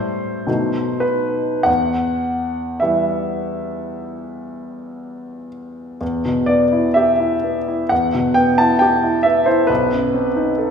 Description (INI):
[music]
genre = classical, romantic nocturne for solo piano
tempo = 47-68 BPM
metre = 4/4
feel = rubato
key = E minor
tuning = A4 = 441 Hz
[part]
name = clear grand piano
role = solo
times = 0.0-10.7 s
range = B1 to A5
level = -16 LUFS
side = equal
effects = none
[sound]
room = wet scoring stage reverb, RT60 1.9 s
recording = heard from further back in the room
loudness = -15 LUFS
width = side -7 dB against mid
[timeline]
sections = 0.0-6.0 A section; 6.0-10.7 A section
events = none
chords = 0.5 B7b9; 1.7 Em; 9.7 B7b9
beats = 0.47 | 1.67 2.82 3.91 4.96 | 6.01 6.97 7.91 8.81 | 9.69 10.57